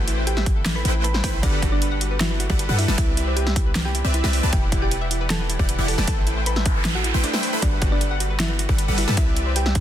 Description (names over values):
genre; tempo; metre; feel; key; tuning
future bass; 155 BPM; 4/4; half-time; G major; A4 = 440 Hz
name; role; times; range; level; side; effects
thumb-piano-like synth pluck; melody; 0.0-9.8 s; D4 to B5; -30 LUFS; right 2 dB; chorus, sidechain pumping, dub echo
supersaw stab; riff; 0.0-9.8 s; E3 to B5; -27 LUFS; equal; sidechain pumping
warm 808-style bass; bass; 0.0-9.8 s; E1 to G2; -23 LUFS; equal; sidechain pumping
soft round pluck; arpeggios; 0.1-9.8 s; E4 to A5; -33 LUFS; left 3 dB; chorus, sidechain pumping, ping-pong delay
big-room dance drum kit; drums; 0.1-9.8 s; hi-hat, snare drum; -27 LUFS; equal; overdrive
electronic kick drum; drums; 0.5-9.8 s; none; -22 LUFS; equal; overdrive
noise sweep; sound effects; 6.4-7.6 s; none; -32 LUFS; right 2 dB; none
room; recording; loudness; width
digital ambience; dense, heavily limited modern master; -19 LUFS; side -11 dB against mid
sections
0.0-9.8 A section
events
noise sweep 6.4-7.6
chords
0.0 Am7; 1.4 Gmaj7; 3.0 Cmaj7; 4.5 Em7; 6.1 Am7; 7.6 Gmaj7; 9.2 Cmaj7